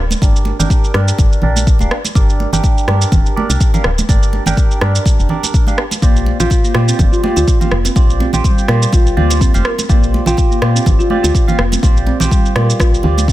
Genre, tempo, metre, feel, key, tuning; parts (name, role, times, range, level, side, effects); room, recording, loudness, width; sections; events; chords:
afro house; 124 BPM; 4/4; swing 55% on 16ths; A4 = 440 Hz
woody FM bass; bass; 0.0-13.3 s; D1 to Bb2; -16 LUFS; equal; sidechain pumping
electronic shaker and rim click; drums; 0.1-13.3 s; -21 LUFS; right 1 dB
congas; percussion; 0.1-13.3 s; -22 LUFS; right 4 dB
barky tine electric piano; stabs; 0.2-13.3 s; D4 to G5; -21 LUFS; right 4 dB; phaser, sidechain pumping, low-pass filter, ping-pong delay
electronic kick drum; drums; 0.2-13.3 s; -13 LUFS; equal
folk marimba with soft mallets; arpeggios; 6.0-13.3 s; G3 to Bb4; -19 LUFS; left 1 dB; sidechain pumping, ping-pong delay
little or no reverb; -11 LUFS; side -15 dB against mid
0.0-13.3 A section
filter sweep on tine electric piano 0.0-13.3
0.0 Gm; 6.0 Bb6